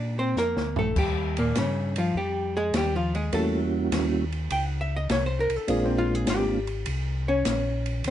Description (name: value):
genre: soul jazz organ trio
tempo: 102 BPM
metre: 4/4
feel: swing 69% on 8ths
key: unclear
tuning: A4 = 440 Hz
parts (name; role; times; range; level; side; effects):
- archtop guitar, miked and amplified; accompaniment; 0.0-8.1 s; Bb2 to G5; -27 LUFS; left 1 dB; none
- mellow tonewheel organ; bass; 0.0-8.1 s; Ab1 to Bb2; -29 LUFS; equal; slow rotary speaker
- open jazz drum kit; drums; 0.4-8.1 s; crash cymbal, hi-hat, kick drum, ride cymbal, snare drum, toms; -31 LUFS; equal; none
- percussive tonewheel organ; melody; 3.3-6.6 s; G3 to Gb4; -25 LUFS; right 2 dB; slow rotary speaker, chorus vibrato
room: light reverb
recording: nothing above 11.0 kHz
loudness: -23 LUFS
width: side -11 dB against mid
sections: 0.0-8.1 A section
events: hollow-body jazz guitar solo 0.0-8.1; drum fill 0.4-1.0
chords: 0.0 Bbadd9; 1.0 Eb9; 3.3 Edim7; 5.7 Bb9